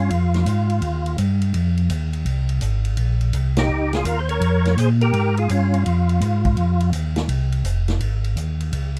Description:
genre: soul jazz organ trio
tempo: 167 BPM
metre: 4/4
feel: swing 66% on 8ths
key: F minor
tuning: A4 = 440 Hz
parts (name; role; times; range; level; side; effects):
- percussive tonewheel organ; melody; 0.0-1.2, 3.6-6.9 s; Db4 to Db5; -26 LUFS; equal; slow rotary speaker, overdrive, chorus vibrato
- mellow tonewheel organ; bass; 0.0-9.0 s; F1 to Bb2; -21 LUFS; equal; chorus vibrato, slow rotary speaker
- vintage drum kit; drums; 0.1-9.0 s; hi-hat, kick drum, ride cymbal, snare drum; -32 LUFS; equal; none
room: moderate booth ambience, RT60 0.2 s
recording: none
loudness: -20 LUFS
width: mono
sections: 0.0-9.0 A section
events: band accent 3.5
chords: 0.1 Fm7; 3.0 Bbm7; 5.9 Fm7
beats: | 0.11 0.47 0.83 1.19 | 1.54 1.90 2.26 2.62 | 2.98 3.34 3.70 4.06 | 4.42 4.78 5.14 5.50 | 5.86 6.21 6.58 6.93 | 7.29 7.65 8.01 8.37 | 8.73

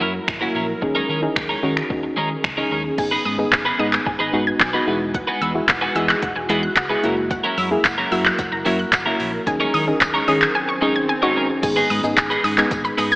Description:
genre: dance-pop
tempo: 111 BPM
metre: 4/4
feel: straight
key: G# minor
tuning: A4 = 439 Hz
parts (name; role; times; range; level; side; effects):
- soft round pluck; accompaniment; 0.0-13.2 s; G#3 to G#4; -23 LUFS; equal; chorus, sidechain pumping
- ethereal airy pad; sustained chords; 0.0-13.2 s; D#3 to B4; -30 LUFS; equal; ensemble chorus, built-in reverb, sidechain pumping
- twelve-string electric guitar; riff; 0.0-13.2 s; F#3 to B4; -24 LUFS; right 1 dB; wide subtle chorus
- vintage muted fingered electric bass; bass; 0.0-13.2 s; E1 to D#3; -30 LUFS; equal; sidechain pumping
- smooth R&B drum kit; drums; 0.3-13.2 s; crash cymbal, finger snaps, handclaps, hi-hat, kick drum, shaker; -21 LUFS; equal; none
- wide unison pluck; arpeggios; 3.0-13.2 s; F#5 to G#6; -24 LUFS; equal; sidechain pumping, tape echo
- tambourine; percussion; 7.3-13.1 s; none; -42 LUFS; left 1 dB; none
- swell; sound effects; 10.4-11.6 s; none; -32 LUFS; right 1 dB; none
room: moderate lush hall reverb, RT60 2.2 s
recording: AM radio sound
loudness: -17 LUFS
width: side -23 dB against mid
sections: 0.0-3.0 A section; 3.0-11.6 B section; 11.6-13.2 C section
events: swell 10.4-11.6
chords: 0.0 F#7; 0.8 D#7sus4; 3.0 G#m; 4.9 Eadd9; 7.0 F#7; 9.5 D#7sus4; 11.6 G#m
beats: 0.28 | 0.82 1.36 1.90 2.44 | 2.98 3.52 4.06 4.60 | 5.14 5.69 6.23 6.77 | 7.31 7.85 8.39 8.93 | 9.47 10.01 10.55 11.09 | 11.63 12.17 12.71

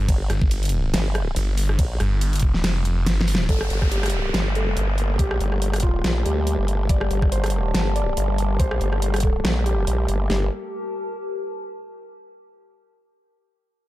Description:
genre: heavy wobble dubstep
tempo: 141 BPM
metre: 4/4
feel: swing 55% on 16ths, half-time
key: G minor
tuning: A4 = 440 Hz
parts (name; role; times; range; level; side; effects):
- snarling distorted saw bass; bass; 0.0-3.5 s; F1 to G1; -21 LUFS; equal; distortion, overdrive
- warbly tape-like pad; texture; 5.0-12.0 s; G4 to A5; -33 LUFS; left 1 dB; chorus, built-in reverb, sidechain pumping
- formant-sweep wobble bass; bass; 0.1-10.5 s; G1 to D2; -22 LUFS; equal; chorus, overdrive
- dubstep drum kit; drums; 0.1-10.4 s; kick drum, snare drum; -21 LUFS; equal; none
- dubstep drum kit; drums; 0.1-10.2 s; hi-hat, ride cymbal, rim click, snare drum; -27 LUFS; equal; none
- felt-muted upright piano; melody; 3.5-10.5 s; F4 to D5; -31 LUFS; left 1 dB; vintage 12-bit sampler grit, dub echo
- lush unison pad; sustained chords; 3.5-10.5 s; G3 to Bb3; -32 LUFS; equal; chorus, sidechain pumping
- downlifter; sound effects; 3.5-6.9 s; none; -32 LUFS; equal; none
room: digital ambience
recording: none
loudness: -20 LUFS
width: side -16 dB against mid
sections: 0.0-3.5 A section; 3.5-10.3 B section; 10.3-12.0 C section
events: drop 0.0-3.5; drum fill 3.1-3.5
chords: 0.0 Gsus2; 3.5 Gmadd9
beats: | 0.09 0.51 0.94 1.36 | 1.79 2.21 2.64 3.06 | 3.49 3.92 4.34 4.77 | 5.19 5.62 6.04 6.47 | 6.89 7.32 7.75 8.17 | 8.60 9.02 9.45 9.87 | 10.30 10.72 11.15 11.57

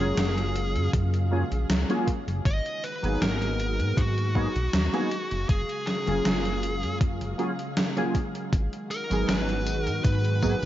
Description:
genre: vaporwave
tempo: 79 BPM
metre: 4/4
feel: straight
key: F# major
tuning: A4 = 441 Hz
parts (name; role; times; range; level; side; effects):
- fuzz lead guitar; melody; 0.0-10.7 s; F#4 to D#5; -32 LUFS; equal; distortion, tape echo
- warbly lo-fi synth keys; accompaniment; 0.0-10.6 s; F#3 to G#4; -30 LUFS; equal; analog chorus, analog delay
- soft string machine; sustained chords; 0.0-10.7 s; C#3 to E#5; -36 LUFS; equal; ensemble chorus
- chorused synth bass; bass; 0.0-10.7 s; F#1 to G#2; -27 LUFS; equal; tube saturation
- gated 80s digital drum machine; drums; 0.0-10.7 s; hi-hat, snare drum, tambourine; -30 LUFS; equal; gated reverb, gated reverb snare, overdrive
- electronic kick drum; drums; 0.9-10.6 s; none; -25 LUFS; equal; overdrive
room: light reverb, digital ambience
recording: nothing above 7.5 kHz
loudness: -24 LUFS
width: side -13 dB against mid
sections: 0.0-10.7 A section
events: none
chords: 0.0 F#maj9; 2.5 G#m9; 5.1 F#maj9; 8.5 G#m7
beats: 0.17 0.93 1.69 | 2.45 3.21 3.97 4.73 | 5.49 6.25 7.01 7.77 | 8.53 9.29 10.05

